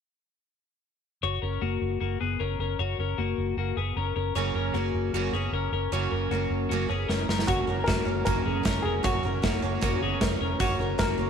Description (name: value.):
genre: jangly indie pop.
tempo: 154 BPM.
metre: 4/4.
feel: straight.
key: F# major.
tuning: A4 = 440 Hz.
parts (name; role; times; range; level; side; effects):
twelve-string electric guitar; arpeggios; 1.2-11.3 s; A#3 to C#5; -30 LUFS; left 11 dB; tape echo.
vintage muted fingered electric bass; bass; 1.2-11.3 s; E#1 to F#1; -30 LUFS; right 2 dB; none.
picked twelve-string acoustic guitar; accompaniment; 4.4-11.3 s; F#2 to C#4; -32 LUFS; right 12 dB; none.
big rock drum kit; drums; 7.1-11.1 s; hi-hat, kick drum, snare drum; -28 LUFS; right 2 dB; none.
warm upright piano; melody; 7.5-11.3 s; F#4 to A#4; -30 LUFS; left 1 dB; none.
room: light reverb, small room ambience.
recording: 1960s-style stereo with parts hard left and right.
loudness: -25 LUFS.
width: side -7 dB against mid.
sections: 1.2-7.5 A section; 7.5-11.3 B section.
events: drum fill 7.1-7.5.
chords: 1.2 F#.